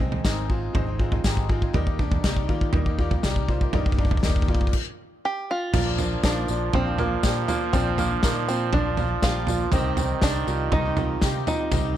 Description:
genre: indie folk with a building arrangement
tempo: 120 BPM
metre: 4/4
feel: straight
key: unclear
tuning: A4 = 441 Hz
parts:
  - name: clear baby grand piano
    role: accompaniment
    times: 0.0-12.0 s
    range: Ab1 to F5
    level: -37 LUFS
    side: left 5 dB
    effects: none
  - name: picked swing-style acoustic guitar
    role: accompaniment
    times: 0.0-12.0 s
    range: Ab2 to Ab4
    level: -33 LUFS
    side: left 8 dB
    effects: none
  - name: warm upright piano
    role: arpeggios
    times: 0.0-12.0 s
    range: C4 to G4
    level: -32 LUFS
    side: right 6 dB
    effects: none
  - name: fingered electric bass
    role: bass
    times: 0.0-12.0 s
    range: Ab1 to Eb3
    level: -28 LUFS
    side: equal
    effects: none
  - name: natural country drum kit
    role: drums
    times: 0.0-11.8 s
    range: crash cymbal, kick drum, snare drum, toms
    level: -24 LUFS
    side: equal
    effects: none
  - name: tambourine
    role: percussion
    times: 0.2-11.8 s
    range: none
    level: -39 LUFS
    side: left 11 dB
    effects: none
  - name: open-back banjo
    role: melody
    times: 5.3-12.0 s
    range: Bb3 to G4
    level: -28 LUFS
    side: right 1 dB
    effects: digital delay
  - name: trombone with straight mute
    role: second line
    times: 5.7-12.0 s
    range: Eb3 to F3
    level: -30 LUFS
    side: right 10 dB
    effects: none
room: small room ambience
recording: dark, warm production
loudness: -21 LUFS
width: side -12 dB against mid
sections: 0.0-5.7 A section; 5.7-12.0 B section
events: build-up 0.0-5.7; drum fill 0.0-4.7; stop 4.7-5.7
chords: 0.0 Ab; 1.7 Eb; 5.7 Bb; 9.7 Cm

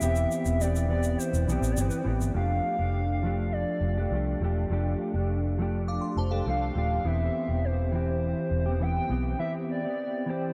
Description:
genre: indie pop, bedroom pop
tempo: 102 BPM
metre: 4/4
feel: straight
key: unclear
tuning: A4 = 441 Hz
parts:
  - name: hollow clarinet-like synth lead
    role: melody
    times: 0.0-10.5 s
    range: B4 to G5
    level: -35 LUFS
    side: equal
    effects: analog chorus, tape echo
  - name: mellow electric guitar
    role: accompaniment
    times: 0.0-10.5 s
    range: E3 to G4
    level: -33 LUFS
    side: equal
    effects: analog chorus, vibrato effect
  - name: vintage muted fingered electric bass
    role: bass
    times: 0.0-9.3 s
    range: Eb1 to C2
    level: -30 LUFS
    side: equal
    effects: none
  - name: egg shaker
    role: percussion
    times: 0.0-2.3 s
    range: none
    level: -43 LUFS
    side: equal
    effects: none
  - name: glassy synth bell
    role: second line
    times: 5.9-7.0 s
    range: A4 to D6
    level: -42 LUFS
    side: equal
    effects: analog chorus, tape echo
room: moderate huge ambient reverb, RT60 8.7 s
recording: dreamy mix soaked in reverb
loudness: -28 LUFS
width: mono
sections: 0.0-2.4 A section; 2.4-10.5 B section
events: break 9.4-10.5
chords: 0.0 Cmaj7; 2.4 F69; 7.0 Cmaj7/E

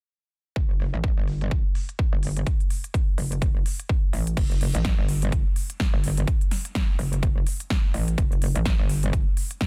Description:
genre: bass house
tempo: 126 BPM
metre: 4/4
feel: swing 58% on 16ths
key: unclear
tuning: A4 = 440 Hz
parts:
  - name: metallic wobble bass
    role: bass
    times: 0.6-9.2 s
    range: F#1 to A1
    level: -28 LUFS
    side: equal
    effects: chorus, sidechain pumping
  - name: big-room dance drum kit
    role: drums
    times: 0.6-9.7 s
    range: crash cymbal, hi-hat, snare drum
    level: -35 LUFS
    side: equal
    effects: overdrive, low-pass filter on hats, low-pass filter on cymbals, low-pass filter on snare
  - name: electronic kick drum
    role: drums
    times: 0.6-9.7 s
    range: none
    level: -26 LUFS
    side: equal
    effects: overdrive
room: little or no reverb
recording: dense, heavily limited modern master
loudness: -24 LUFS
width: mono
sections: 0.6-4.4 A section; 4.4-9.7 B section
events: none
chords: none

